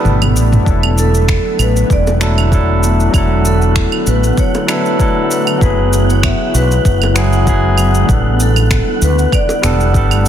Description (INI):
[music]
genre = sunset chillout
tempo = 97 BPM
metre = 4/4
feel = swing 54% on 16ths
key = unclear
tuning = A4 = 441 Hz
[part]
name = barky tine electric piano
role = accompaniment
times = 0.0-10.3 s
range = F#3 to B4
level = -18 LUFS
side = moving between left 3 dB and right 3 dB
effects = overdrive, auto-pan, low-pass filter, tape echo
[part]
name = shimmering ambient pad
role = sustained chords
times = 0.0-10.3 s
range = C#3 to E4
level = -20 LUFS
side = equal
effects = chorus, built-in reverb
[part]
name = mellow fretless electric bass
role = bass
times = 0.1-10.3 s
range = E1 to D2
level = -13 LUFS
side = equal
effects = none
[part]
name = deep house drum kit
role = drums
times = 0.1-10.3 s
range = claves, finger snaps, shaker, toms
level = -20 LUFS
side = right 1 dB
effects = small room ambience, soft clipping on snare
[part]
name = electronic kick drum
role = drums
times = 0.7-10.1 s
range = none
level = -15 LUFS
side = equal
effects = small room ambience
[part]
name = wind-like tuned noise texture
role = texture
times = 1.1-10.3 s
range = F#5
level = -25 LUFS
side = right 1 dB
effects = built-in reverb
[part]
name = vibraphone with medium mallets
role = melody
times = 1.0-10.2 s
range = A4 to E5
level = -20 LUFS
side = left 1 dB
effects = ping-pong delay
[part]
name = bongos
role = percussion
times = 2.1-9.6 s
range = none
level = -26 LUFS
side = right 1 dB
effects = none
[sound]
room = light reverb, digital ambience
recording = dense, heavily limited modern master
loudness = -10 LUFS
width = side -10 dB against mid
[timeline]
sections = 0.0-10.3 A section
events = drum fill 0.0-0.7; filter sweep on tine electric piano 0.0-10.3; break 0.0-0.7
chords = 0.0 A9sus4; 0.7 E9sus4; 5.6 F#9sus4; 8.1 A9sus4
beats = 0.05 | 0.67 1.29 1.91 2.52 | 3.14 3.76 4.38 5.00 | 5.62 6.24 6.85 7.47 | 8.09 8.71 9.33 9.95